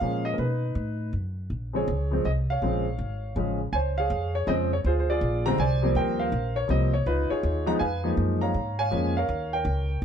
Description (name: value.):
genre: jazz.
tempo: 162 BPM.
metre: 3/4.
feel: swing 65% on 8ths.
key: Bb minor.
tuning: A4 = 441 Hz.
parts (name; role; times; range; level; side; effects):
warm grand piano; melody; 0.0-10.0 s; Db3 to Bb5; -26 LUFS; equal; none.
upright bass; bass; 0.0-10.0 s; Ab1 to B2; -27 LUFS; equal; none.
room: light reverb.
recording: none.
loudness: -24 LUFS.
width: side -8 dB against mid.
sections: 0.0-3.7 A section; 3.7-10.0 B section.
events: none.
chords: 0.4 B7; 1.5 Bbm9; 3.7 Dbmaj7; 4.8 Bb13; 6.0 Eb69; 7.1 Db9; 8.2 Gbmaj9; 9.3 Eb.